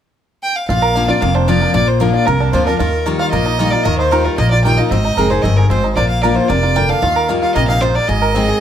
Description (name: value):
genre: bluegrass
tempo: 227 BPM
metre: 4/4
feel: straight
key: Bb mixolydian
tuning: A4 = 442 Hz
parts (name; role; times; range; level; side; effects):
- clear fiddle; melody; 0.4-8.6 s; Bb4 to G5; -18 LUFS; equal; none
- picked steel-string acoustic guitar; accompaniment; 0.7-8.6 s; F2 to Ab4; -17 LUFS; left 3 dB; none
- bluegrass banjo; arpeggios; 0.7-8.6 s; Bb3 to Bb4; -20 LUFS; right 4 dB; none
- upright bass; bass; 0.7-8.5 s; F1 to Eb2; -18 LUFS; equal; none
room: moderate studio ambience, RT60 0.5 s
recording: heard from further back in the room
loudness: -12 LUFS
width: side -9 dB against mid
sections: 0.7-8.6 A section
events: none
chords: 0.0 N.C.; 0.7 Bb; 2.8 Ebadd9; 4.9 Ab; 6.0 Bb; 7.0 Ebadd9; 8.1 Ab